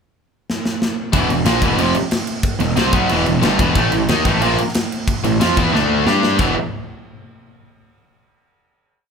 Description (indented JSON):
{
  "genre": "heavy metal",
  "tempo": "182 BPM",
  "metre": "4/4",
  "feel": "straight",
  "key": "unclear",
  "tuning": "A4 = 440 Hz",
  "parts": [
    { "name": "tight metal drum kit", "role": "drums", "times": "0.5-6.5 s", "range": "crash cymbal, kick drum, snare drum", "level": "-20 LUFS", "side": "equal", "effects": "none" },
    { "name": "high-gain distorted guitar", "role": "riff", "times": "1.1-6.5 s", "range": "E2 to G4", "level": "-20 LUFS", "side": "left 10 dB", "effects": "distortion" },
    { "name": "tight distorted guitar", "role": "riff", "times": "1.1-6.5 s", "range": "E2 to G4", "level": "-19 LUFS", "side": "right 5 dB", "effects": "distortion" },
    { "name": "fuzz picked electric bass", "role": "bass", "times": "1.1-6.5 s", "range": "E1 to G2", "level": "-21 LUFS", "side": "left 1 dB", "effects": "overdrive" }
  ],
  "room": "light reverb",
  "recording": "band playing live in one room",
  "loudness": "-14 LUFS",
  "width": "side -6 dB against mid",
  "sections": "0.0-1.1 pickup bar; 1.1-6.4 riff; 6.4-7.7 final chord",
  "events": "drum fill 0.5-1.1, 5.7-6.4",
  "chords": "0.0 N.C.; 1.1 Em; 3.8 A5; 5.7 D5; 6.1 G5; 6.4 E5",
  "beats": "0.14 0.47 0.80 | 1.12 1.45 1.78 2.11 | 2.44 2.76 3.09 3.42 | 3.75 4.08 4.41 4.74 | 5.07 5.40 5.74 6.07 | 6.40"
}